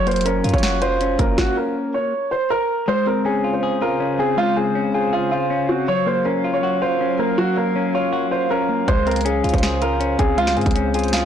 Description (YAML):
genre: hip hop, trap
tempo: 160 BPM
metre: 4/4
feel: half-time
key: Db major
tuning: A4 = 440 Hz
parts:
  - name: dark baby grand piano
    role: melody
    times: 0.0-11.2 s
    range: F4 to Db5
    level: -20 LUFS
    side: right 2 dB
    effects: none
  - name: semi-hollow electric guitar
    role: accompaniment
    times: 0.0-11.2 s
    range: Gb3 to Ab4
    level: -22 LUFS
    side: left 3 dB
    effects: none
  - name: clean 808-style bass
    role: bass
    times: 0.0-1.4, 8.9-11.2 s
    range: Gb1 to Ab2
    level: -24 LUFS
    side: equal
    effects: none
  - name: trap drum kit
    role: drums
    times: 0.1-1.5, 8.9-11.2 s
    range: hi-hat, kick drum, snare drum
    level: -22 LUFS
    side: equal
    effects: vintage 12-bit sampler grit
  - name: warbly tape-like pad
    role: sustained chords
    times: 3.4-11.2 s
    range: Db3 to F5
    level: -27 LUFS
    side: right 2 dB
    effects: chorus, built-in reverb
room: light reverb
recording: blown-out, overdriven recording, overdrive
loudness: -17 LUFS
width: side -9 dB against mid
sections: 0.0-2.9 A section; 2.9-11.2 B section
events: stop 1.4-2.9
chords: 0.0 Gbmaj7; 2.9 Dbmaj7; 5.9 Gbmaj7; 8.9 Dbmaj7